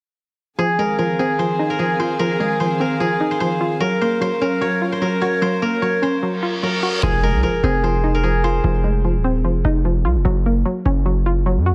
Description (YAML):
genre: hip hop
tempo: 149 BPM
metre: 4/4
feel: half-time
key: F phrygian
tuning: A4 = 440 Hz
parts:
  - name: steel-string zither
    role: melody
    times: 0.6-10.5 s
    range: Ab4 to Db5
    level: -23 LUFS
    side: equal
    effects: low-pass filter, digital delay
  - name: hollow square pluck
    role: accompaniment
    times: 0.6-11.7 s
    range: F3 to Gb4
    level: -24 LUFS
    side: equal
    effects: chorus, low-pass filter
  - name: dark chamber string section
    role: sustained chords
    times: 0.6-7.0 s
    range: Eb3 to F5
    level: -28 LUFS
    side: equal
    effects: none
  - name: reverse cymbal and impact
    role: sound effects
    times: 6.4-8.6 s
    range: none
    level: -30 LUFS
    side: equal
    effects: none
  - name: hard-hitting 808-style bass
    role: bass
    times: 7.0-11.7 s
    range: Eb1 to Gb2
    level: -20 LUFS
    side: equal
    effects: none
room: light reverb, small room ambience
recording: none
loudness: -19 LUFS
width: mono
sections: 0.6-7.0 A section; 7.0-11.7 B section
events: reverse cymbal 6.4-7.0; impact 7.0-8.6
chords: 0.6 Fm7; 3.8 Gbmaj7; 7.0 Fm7; 10.3 Gbmaj7